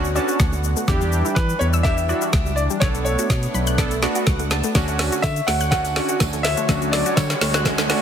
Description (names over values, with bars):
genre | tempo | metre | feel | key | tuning
dance-pop | 124 BPM | 4/4 | straight | unclear | A4 = 440 Hz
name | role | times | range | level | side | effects
bright concert grand piano | melody | 0.0-8.0 s | B4 to F#5 | -26 LUFS | left 1 dB | dub echo
warm analog keys | accompaniment | 0.0-8.0 s | B3 to A5 | -26 LUFS | right 3 dB | chorus, sidechain pumping
soft supersaw | sustained chords | 0.0-8.0 s | D3 to C#5 | -29 LUFS | equal | sidechain pumping
organ-like FM bass | bass | 0.0-7.9 s | B1 to E3 | -23 LUFS | equal | sidechain pumping
smooth R&B drum kit | drums | 0.0-8.0 s | hi-hat, kick drum, shaker, snare drum | -22 LUFS | equal | soft clipping on snare
wide unison pluck | arpeggios | 0.2-8.0 s | D3 to F#6 | -29 LUFS | moving between left 6 dB and right 3 dB | auto-pan, sidechain pumping, dub echo
tambourine | percussion | 4.8-7.9 s | none | -39 LUFS | right 8 dB | none
riser | sound effects | 5.9-8.0 s | none | -28 LUFS | right 2 dB | none
room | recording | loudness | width
light reverb, digital ambience | dense, heavily limited modern master, high-pass filter | -18 LUFS | side -8 dB against mid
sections
0.0-8.0 A section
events
build-up 0.0-8.0; drum fill 0.0-8.0; synth keys fill 0.0-0.9, 4.0-4.8; filter sweep 0.0-8.0; riser 5.9-8.0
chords
0.0 Dmaj7; 0.9 Em7; 2.8 Bm7